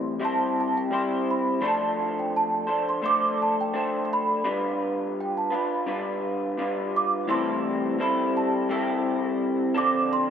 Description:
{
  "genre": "indie pop",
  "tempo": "85 BPM",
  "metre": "4/4",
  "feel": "straight",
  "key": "A minor",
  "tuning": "A4 = 442 Hz",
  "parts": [
    { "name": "celesta", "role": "melody", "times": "0.0-10.3 s", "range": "G5 to D6", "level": "-27 LUFS", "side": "right 3 dB", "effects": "analog chorus, tape echo" },
    { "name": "electric guitar through a small old amp", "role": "accompaniment", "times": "0.0-10.3 s", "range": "A2 to C5", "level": "-25 LUFS", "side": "left 1 dB", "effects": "analog chorus, vibrato effect" }
  ],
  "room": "wet plate reverb, RT60 2.3 s",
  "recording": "rough home demo mix",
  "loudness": "-23 LUFS",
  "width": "side -8 dB against mid",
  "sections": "0.0-7.3 A section; 7.3-10.3 B section",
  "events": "none",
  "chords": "0.0 Am7; 1.6 F6; 4.5 G7; 7.3 Am7; 9.8 Dm7"
}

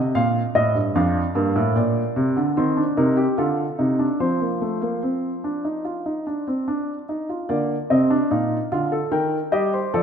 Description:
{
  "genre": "classical, baroque-style 3-part fugue for grand piano",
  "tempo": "74 BPM",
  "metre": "4/4",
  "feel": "straight",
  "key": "Bb major",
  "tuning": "A4 = 440 Hz",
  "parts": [
    { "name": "warm baby grand piano", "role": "solo", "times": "0.0-10.0 s", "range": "F2 to G5", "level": "-19 LUFS", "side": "equal", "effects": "none" }
  ],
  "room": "moderate scoring stage reverb, RT60 2.1 s",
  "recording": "none",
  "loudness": "-19 LUFS",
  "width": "side -7 dB against mid",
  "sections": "0.0-7.5 A section; 7.5-10.0 B section",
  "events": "none",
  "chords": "0.0 Gm/Bb; 1.0 Bb/F; 2.6 Cm7; 4.2 F5; 7.5 Bb; 9.1 Eb"
}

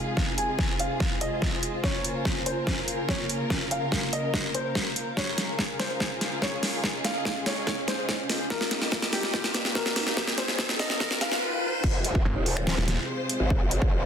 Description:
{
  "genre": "heavy wobble dubstep",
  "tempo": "144 BPM",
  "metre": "4/4",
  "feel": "half-time",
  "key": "F minor",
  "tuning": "A4 = 439 Hz",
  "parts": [
    { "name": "felt-muted upright piano", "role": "melody", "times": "0.0-11.4 s", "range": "G4 to Ab5", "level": "-33 LUFS", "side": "left 1 dB", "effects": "ping-pong delay" },
    { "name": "warm studio string section", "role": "sustained chords", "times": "0.0-14.1 s", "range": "Bb2 to C5", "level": "-34 LUFS", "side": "left 1 dB", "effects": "sidechain pumping" },
    { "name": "granular cloud pad", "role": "texture", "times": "0.0-11.4 s", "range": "Db4 to Bb5", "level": "-36 LUFS", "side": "equal", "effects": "built-in reverb, sidechain pumping" },
    { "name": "dubstep drum kit", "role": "drums", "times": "0.2-13.8 s", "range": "crash cymbal, finger snaps, hi-hat, snare drum", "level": "-28 LUFS", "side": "equal", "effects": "overdrive" },
    { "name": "electronic kick drum", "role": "drums", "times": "0.2-13.9 s", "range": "none", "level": "-30 LUFS", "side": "equal", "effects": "overdrive" },
    { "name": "riser and swell", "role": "sound effects", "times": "8.1-11.8 s", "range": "none", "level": "-35 LUFS", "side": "left 1 dB", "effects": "none" },
    { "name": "growl bass", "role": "bass", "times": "11.8-14.1 s", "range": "Eb1 to Ab1", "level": "-28 LUFS", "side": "equal", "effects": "distortion, chorus, overdrive" },
    { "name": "snarling distorted saw bass", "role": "bass", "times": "12.3-13.0 s", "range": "Eb1 to G1", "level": "-27 LUFS", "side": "equal", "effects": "distortion, overdrive" }
  ],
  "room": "moderate digital room reverb, RT60 1.0 s",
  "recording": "dense, heavily limited modern master, high-pass filter",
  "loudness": "-25 LUFS",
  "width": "side -8 dB against mid",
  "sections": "0.0-11.8 A section; 11.8-14.1 B section",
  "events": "build-up 0.0-11.8; drum fill 0.0-11.4; filter sweep 0.0-11.8; riser 8.1-11.8; swell 11.0-11.8; drop 11.8-14.1",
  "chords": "0.0 Fm; 1.8 Bbm; 5.2 Db; 8.5 Eb; 11.8 Fm"
}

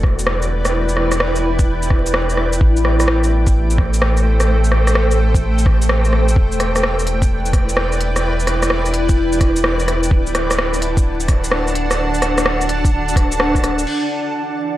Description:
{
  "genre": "future garage",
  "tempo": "128 BPM",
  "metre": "4/4",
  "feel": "swing 66% on 16ths",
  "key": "E minor",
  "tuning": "A4 = 440 Hz",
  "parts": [
    { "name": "granular cloud pad", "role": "sustained chords", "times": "0.0-14.8 s", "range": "E3 to A5", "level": "-20 LUFS", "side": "equal", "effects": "built-in reverb, sidechain pumping" },
    { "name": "soft dub sub bass", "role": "bass", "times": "0.0-13.8 s", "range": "D1 to A1", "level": "-18 LUFS", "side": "equal", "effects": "sidechain pumping" },
    { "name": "electronic kick drum", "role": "drums", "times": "0.0-13.6 s", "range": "none", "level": "-15 LUFS", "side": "equal", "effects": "none" },
    { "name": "organic electronic drum kit", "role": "drums", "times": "0.0-14.0 s", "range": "crash cymbal, hi-hat, rim click, shaker", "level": "-20 LUFS", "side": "equal", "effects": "none" }
  ],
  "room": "digital ambience",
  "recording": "dry, gritty hardware recording, vinyl crackle",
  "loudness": "-14 LUFS",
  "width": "side -14 dB against mid",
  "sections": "0.0-13.9 A section",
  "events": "band accent 13.4",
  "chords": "0.0 Em7; 2.6 Am7; 6.4 Em7; 10.1 D; 13.9 Em7"
}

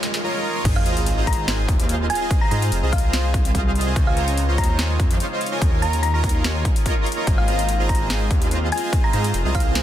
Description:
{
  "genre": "future bass",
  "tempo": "145 BPM",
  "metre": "4/4",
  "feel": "swing 53% on 16ths, half-time",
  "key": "Ab major",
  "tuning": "A4 = 440 Hz",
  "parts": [
    { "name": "shimmering ambient pad", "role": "sustained chords", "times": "0.0-9.8 s", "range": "Eb2 to F5", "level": "-33 LUFS", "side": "equal", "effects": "chorus, built-in reverb, sidechain pumping" },
    { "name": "trap drum kit", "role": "drums", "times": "0.0-9.8 s", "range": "crash cymbal, hi-hat, snare drum, toms", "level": "-28 LUFS", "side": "left 1 dB", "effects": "overdrive, high-pass filter on snare, high-pass filter on hats, high-pass filter on toms, high-pass filter on cymbals" },
    { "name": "riser and sub drop", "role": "sound effects", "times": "0.0-2.3 s", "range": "none", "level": "-29 LUFS", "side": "equal", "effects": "none" },
    { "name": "soft supersaw", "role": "riff", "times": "0.2-9.8 s", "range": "F4 to Bb5", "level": "-26 LUFS", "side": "right 1 dB", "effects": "sidechain pumping" },
    { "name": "wide detuned saw bass", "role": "bass", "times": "0.7-9.8 s", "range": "F1 to Ab2", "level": "-22 LUFS", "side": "equal", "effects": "chorus, tube saturation, sidechain pumping" },
    { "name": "electronic kick drum", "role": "drums", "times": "0.7-9.6 s", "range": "none", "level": "-20 LUFS", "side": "equal", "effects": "none" },
    { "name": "thumb-piano-like synth pluck", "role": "melody", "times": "0.8-9.8 s", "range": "F5 to Bb5", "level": "-28 LUFS", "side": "equal", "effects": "chorus, sidechain pumping, dub echo" }
  ],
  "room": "little or no reverb",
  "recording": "dense, heavily limited modern master",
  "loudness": "-18 LUFS",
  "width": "side -11 dB against mid",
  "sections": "0.7-9.8 A section",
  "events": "drum fill 0.0, 0.3-0.7; riser 0.0; drop 0.7-9.8; impact 0.7-2.3",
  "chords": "0.0 Eb9sus4; 0.7 Ab6; 4.0 Dbmaj9; 5.4 Eb9sus4; 7.3 Ab6"
}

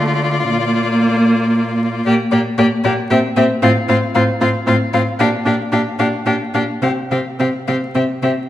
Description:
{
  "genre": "quick classical-period movement for string quartet",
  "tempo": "114 BPM",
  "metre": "3/4",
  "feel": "uneven beats, rubato",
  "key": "unclear",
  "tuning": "A4 = 437 Hz",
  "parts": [
    { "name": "rich violin", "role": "melody", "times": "0.0-8.3 s", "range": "D5 to F5", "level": "-23 LUFS", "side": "left 7 dB", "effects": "none" },
    { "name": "warm violin", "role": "second line", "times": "0.0-8.3 s", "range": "F4 to G4", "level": "-21 LUFS", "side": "left 2 dB", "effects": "none" },
    { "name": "warm viola", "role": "accompaniment", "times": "0.0-8.3 s", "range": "A3 to D4", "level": "-18 LUFS", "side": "equal", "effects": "none" },
    { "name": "dark cello", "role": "bass", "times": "0.0-8.3 s", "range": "A2 to D3", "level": "-19 LUFS", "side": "right 1 dB", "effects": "none" }
  ],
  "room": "wet recital hall reverb, RT60 1.7 s",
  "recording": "vinyl crackle",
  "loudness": "-14 LUFS",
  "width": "side -13 dB against mid",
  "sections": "0.0-8.5 A section",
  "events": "none",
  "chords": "0.0 Dm; 0.5 Bb; 3.1 C7; 3.6 F/A; 5.2 Gm7/Bb; 6.8 Csus4"
}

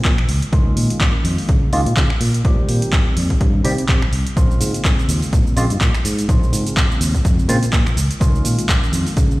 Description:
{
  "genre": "filtered disco house",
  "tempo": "125 BPM",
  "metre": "4/4",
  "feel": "swing 56% on 16ths",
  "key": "Bb dorian",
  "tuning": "A4 = 441 Hz",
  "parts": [
    { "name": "fingered electric bass", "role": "bass", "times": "0.0-9.4 s", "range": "Bb1 to Db3", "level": "-19 LUFS", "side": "equal", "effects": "sidechain pumping, low-pass filter" },
    { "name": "electronic kick drum", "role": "drums", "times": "0.0-9.3 s", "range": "none", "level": "-17 LUFS", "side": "equal", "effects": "none" },
    { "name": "punchy analog drum machine", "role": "drums", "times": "0.0-9.4 s", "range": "finger snaps, handclaps, hi-hat, shaker", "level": "-23 LUFS", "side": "right 1 dB", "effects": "sidechain pumping on hats, sidechain pumping on cymbals, sidechain pumping on perc" },
    { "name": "barky tine electric piano", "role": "accompaniment", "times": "0.5-9.4 s", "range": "Db3 to G4", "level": "-24 LUFS", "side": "equal", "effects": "overdrive, phaser, sidechain pumping, low-pass filter" }
  ],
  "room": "digital ambience",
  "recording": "played on a big sound system in a bare room, stone room reverb",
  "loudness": "-14 LUFS",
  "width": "side -19 dB against mid",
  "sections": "0.0-9.4 A section",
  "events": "filter sweep 0.0-9.4",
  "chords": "0.3 Db6; 2.4 Cm7; 4.4 Bbm7; 8.0 Db6"
}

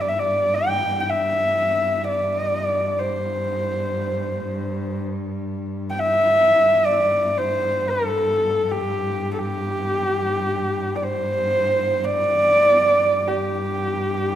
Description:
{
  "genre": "mongolian traditional, Mongolian folk",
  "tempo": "free time",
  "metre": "none",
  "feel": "none",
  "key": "G zhi mode",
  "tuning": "A4 = 440 Hz",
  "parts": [
    { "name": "warm horsehead fiddle", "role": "melody", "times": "0.0-14.4 s", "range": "G4 to G5", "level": "-19 LUFS", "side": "equal", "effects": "none" },
    { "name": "dark cello", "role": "drone", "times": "0.0-14.4 s", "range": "G2", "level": "-28 LUFS", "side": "left 1 dB", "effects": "none" }
  ],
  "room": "wet concert hall reverb, RT60 1.9 s",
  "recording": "none",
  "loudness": "-19 LUFS",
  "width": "side -11 dB against mid",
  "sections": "0.0-14.4 A section",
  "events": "slowing down 12.3-14.4",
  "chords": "none"
}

